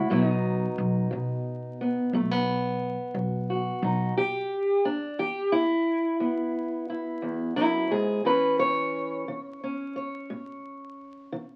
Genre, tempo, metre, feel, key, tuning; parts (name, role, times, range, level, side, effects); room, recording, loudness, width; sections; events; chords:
acoustic country blues, solo or duo; 59 BPM (dotted quarters); 12/8; straight; A4 = 440 Hz
fingerpicked steel-string acoustic guitar; melody; 0.0-11.6 s; E2 to C#5; -28 LUFS; equal
upright bass; bass; 0.0-4.1 s; B1 to B2; -31 LUFS; equal
moderate club reverb, RT60 0.7 s; very old 78 rpm record, vinyl crackle; -27 LUFS; mono
0.0-4.2 A section; 4.2-11.6 B section
steel-string acoustic guitar solo 4.2-11.6
0.1 B; 4.2 E5; 8.2 A